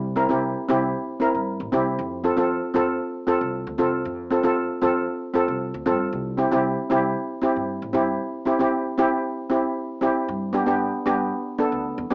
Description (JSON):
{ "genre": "calypso", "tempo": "116 BPM", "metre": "4/4", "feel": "straight", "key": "unclear", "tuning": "A4 = 440 Hz", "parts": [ { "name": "upright bass", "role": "bass", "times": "0.0-12.1 s", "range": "A1 to G2", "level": "-32 LUFS", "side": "equal", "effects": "none" }, { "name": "steel pan", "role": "accompaniment", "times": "0.2-12.1 s", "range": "B3 to Bb4", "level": "-21 LUFS", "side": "equal", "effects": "none" } ], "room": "moderate small room reverb, RT60 0.5 s", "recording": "small speaker sound", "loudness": "-21 LUFS", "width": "side -28 dB against mid", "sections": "0.0-10.3 A section; 10.3-12.1 A section", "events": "none", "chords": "0.0 C; 2.0 F; 6.1 C; 10.3 Gadd9" }